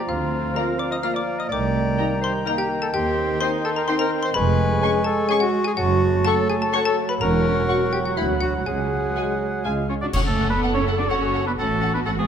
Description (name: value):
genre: cinematic, playful, whimsical film cue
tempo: 126 BPM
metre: 3/4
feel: straight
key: F# minor from 4.4 s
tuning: A4 = 439 Hz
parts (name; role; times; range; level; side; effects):
- xylophone with wooden mallets; melody; 0.0-9.9 s; E5 to F6; -29 LUFS; left 6 dB; none
- silver concert flute; second line; 0.0-9.9 s; G#5 to C#6; -32 LUFS; left 2 dB; none
- warm oboe; second line; 0.0-12.3 s; G#4 to A5; -29 LUFS; equal; none
- mellow bassoon; accompaniment; 0.0-9.9 s; Eb3 to G#3; -28 LUFS; right 3 dB; none
- muted studio viola section; accompaniment; 0.0-12.3 s; F#3 to A4; -30 LUFS; right 1 dB; none
- bright clarinet; second line; 0.1-9.9 s; E4 to F5; -26 LUFS; left 1 dB; none
- muted studio cello section; bass; 0.1-12.3 s; C2 to D4; -28 LUFS; right 2 dB; none
- muted studio double bass section; bass; 0.1-12.3 s; E1 to Eb2; -27 LUFS; right 3 dB; none
- muted studio violin section; melody; 0.6-12.1 s; F#5 to C#6; -32 LUFS; left 3 dB; none
- muted studio violin section; second line; 0.6-12.3 s; B3 to A5; -32 LUFS; left 4 dB; none
- mellow French horn section; sustained chords; 0.6-9.8 s; G#3 to A4; -29 LUFS; left 5 dB; none
- clash cymbals and concert bass drum; percussion; 10.1-11.1 s; none; -28 LUFS; left 1 dB; none
room: moderate scoring stage reverb, RT60 1.6 s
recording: none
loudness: -19 LUFS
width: side -8 dB against mid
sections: 0.0-10.1 A section; 10.1-12.3 B section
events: band accent 10.1-10.6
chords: 0.1 Bb/D; 1.5 Cm7; 2.9 Cm/Eb; 4.4 C#7/E#; 5.8 F#m; 7.2 F#7/E; 8.2 Bm/D; 8.7 C#sus4; 9.6 C#; 10.1 F#m; 11.6 F#m/A